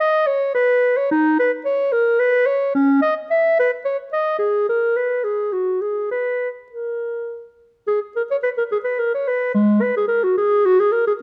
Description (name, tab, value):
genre	classical, baroque-style fantasia for unaccompanied clarinet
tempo	101-112 BPM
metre	3/4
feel	rubato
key	G# minor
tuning	A4 = 439 Hz
part	dark clarinet	solo	0.0-11.1 s	G#3 to E5	-19 LUFS	equal	none
room	moderate stone room reverb, RT60 1.3 s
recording	dark, warm production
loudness	-19 LUFS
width	mono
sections	0.0-7.9 A section; 7.9-11.2 A section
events	none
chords	none